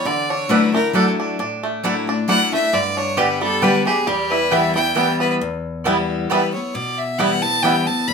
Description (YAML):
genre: bluegrass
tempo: 135 BPM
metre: 3/4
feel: swing 53% on 8ths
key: E dorian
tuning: A4 = 440 Hz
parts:
  - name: clear fiddle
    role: melody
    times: 0.0-8.1 s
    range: G4 to B5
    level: -20 LUFS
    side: left 1 dB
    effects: none
  - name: picked steel-string acoustic guitar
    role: accompaniment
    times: 0.0-8.1 s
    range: E2 to G4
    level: -21 LUFS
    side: left 3 dB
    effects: none
  - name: bluegrass banjo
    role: arpeggios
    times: 0.0-7.7 s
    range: D3 to G4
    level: -23 LUFS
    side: right 4 dB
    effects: none
  - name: mandolin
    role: stabs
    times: 0.5-7.7 s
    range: A3 to G5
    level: -22 LUFS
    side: right 4 dB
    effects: none
room: moderate studio reverb, RT60 0.5 s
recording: minimal, uncompressed stereo recording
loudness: -16 LUFS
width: side -5 dB against mid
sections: 0.0-5.4 A section; 5.4-8.1 A section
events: fiddle solo 0.0-8.1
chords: 0.1 Dadd9; 2.7 G; 4.1 Em